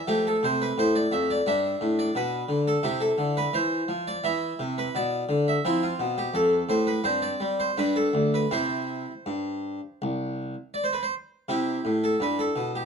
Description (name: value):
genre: classical, baroque-style suite movement for harpsichord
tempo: 79-88 BPM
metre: 4/4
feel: rubato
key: C major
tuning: A4 = 439 Hz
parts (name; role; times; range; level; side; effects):
- harpsichord; solo; 0.0-12.9 s; C2 to E5; -23 LUFS; equal; none
room: light reverb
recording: dark, warm production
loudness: -24 LUFS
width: side -6 dB against mid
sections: 0.0-11.5 A section; 11.5-12.9 B section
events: none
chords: 0.1 F; 1.5 G; 2.8 C; 4.2 E5; 5.6 F; 7.0 C5/G; 7.8 G5; 8.5 C